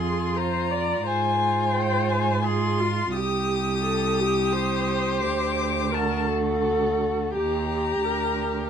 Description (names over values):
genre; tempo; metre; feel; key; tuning
classical, slow romantic movement for string quartet; 86 BPM; 3/4; rubato; unclear; A4 = 441 Hz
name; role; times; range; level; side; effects
rich violin; melody; 0.0-8.7 s; G5 to Eb6; -28 LUFS; left 4 dB; none
rich violin; second line; 0.0-8.7 s; F4 to G4; -31 LUFS; left 4 dB; none
rich viola; accompaniment; 0.0-8.7 s; F4 to D5; -27 LUFS; right 1 dB; none
rich cello; bass; 0.0-8.7 s; C2 to Ab2; -27 LUFS; right 4 dB; none
room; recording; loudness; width
light reverb; dark, warm production; -22 LUFS; side -8 dB against mid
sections
0.0-8.7 A section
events
none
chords
0.0 Fm; 1.1 Fm/Ab; 3.1 Cm6; 5.2 D7; 7.3 Eb; 8.0 Gm/D